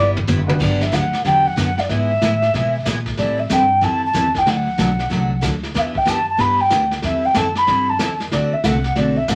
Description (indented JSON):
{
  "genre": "country, western swing",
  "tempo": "187 BPM",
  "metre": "4/4",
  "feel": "swing 63% on 8ths",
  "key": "G major",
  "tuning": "A4 = 438 Hz",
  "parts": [
    { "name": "picked steel-string acoustic guitar", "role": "accompaniment", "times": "0.0-9.3 s", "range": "D3 to A4", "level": "-24 LUFS", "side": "equal", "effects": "none" },
    { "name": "upright bass", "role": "bass", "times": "0.0-9.3 s", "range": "F#1 to B2", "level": "-26 LUFS", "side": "equal", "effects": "none" },
    { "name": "vintage brush drum kit", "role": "drums", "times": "0.2-9.3 s", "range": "brushed snare drum, crash cymbal, hi-hat, kick drum, snare drum, toms", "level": "-27 LUFS", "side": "equal", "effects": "none" },
    { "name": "warm upright piano", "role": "accompaniment", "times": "0.5-0.9 s", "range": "B3 to B4", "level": "-27 LUFS", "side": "equal", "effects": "none" },
    { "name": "mellow alto ocarina", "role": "melody", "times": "0.6-9.3 s", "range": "D5 to B5", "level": "-20 LUFS", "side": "equal", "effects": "none" }
  ],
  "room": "wet studio ambience, RT60 0.5 s",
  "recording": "vinyl crackle",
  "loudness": "-18 LUFS",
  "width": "mono",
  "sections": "0.6-9.3 A section",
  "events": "drum fill 0.0-0.6",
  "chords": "0.0 G6; 0.6 Gmaj7; 1.9 E/G#; 3.2 Am7; 4.5 D; 5.7 Em7; 7.0 Am7/E; 8.3 D7",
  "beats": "0.28 | 0.60 0.92 1.25 1.57 | 1.89 2.21 2.53 2.85 | 3.17 3.50 3.82 4.14 | 4.46 4.78 5.10 5.42 | 5.75 6.07 6.39 6.71 | 7.03 7.35 7.68 8.00 | 8.32 8.64 8.96 9.28"
}